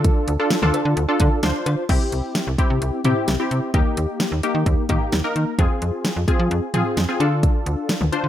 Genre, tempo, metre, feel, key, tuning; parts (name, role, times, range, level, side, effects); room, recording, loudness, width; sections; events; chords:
synth-pop; 130 BPM; 4/4; straight; A4 = 440 Hz
funky polysynth comp; accompaniment; 0.0-8.3 s; Bb3 to C5; -22 LUFS; left 2 dB; chorus
slap-like FM bass; bass; 0.0-8.3 s; C2 to F3; -22 LUFS; equal
pop drum kit; drums; 0.0-8.2 s; cowbell, crash cymbal, hi-hat, kick drum, snare drum, toms; -21 LUFS; equal
light reverb; -18 LUFS; side -11 dB against mid
0.0-1.9 A section; 1.9-8.3 B section
0.0 Dm; 1.9 C; 3.7 Eb; 5.6 Fm; 7.2 Dm